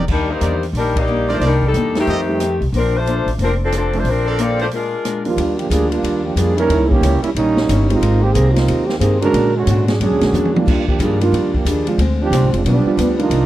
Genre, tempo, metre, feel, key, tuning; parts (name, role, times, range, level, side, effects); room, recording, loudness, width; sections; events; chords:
jazz, big band swing; 182 BPM; 4/4; swing 63% on 8ths; Bb major, Eb major from 5.4 s; A4 = 440 Hz
clear trumpet section; stabs; 0.0-2.2, 4.3-4.7 s; Eb4 to Eb5; -25 LUFS; right 2 dB
upright bass; bass; 0.0-13.5 s; F1 to Bb2; -18 LUFS; equal
clear saxophone section; melody; 0.1-5.2 s; Eb3 to D5; -19 LUFS; left 2 dB; slapback echo
picked acoustic archtop guitar; accompaniment; 0.1-13.5 s; G2 to C5; -24 LUFS; left 5 dB
swinging big-band drum kit; drums; 0.1-13.4 s; crash cymbal, hi-hat, kick drum, ride cymbal, rim click, snare drum, toms; -24 LUFS; equal
warm grand piano; accompaniment; 1.3-13.3 s; Eb2 to G4; -21 LUFS; right 2 dB
bright trombone section; second line; 5.3-13.5 s; D3 to Bb4; -17 LUFS; right 3 dB
small room ambience; dry, close 1970s-style studio recording; -14 LUFS; side -14 dB against mid
0.0-5.4 A section; 5.4-13.5 B section
band accent 0.9; break 4.7-5.4; trombone section solo 5.4-13.5; drum fill 10.3-10.7
0.1 Ebmaj7; 1.4 Cm9; 2.1 F9; 2.7 Bbmaj9; 4.7 Bb7; 5.4 Ebmaj9; 6.7 Eb7b9; 8.0 Abmaj9; 9.3 Bb7alt; 10.7 Ebmaj9; 12.0 Dm7b5; 12.6 G7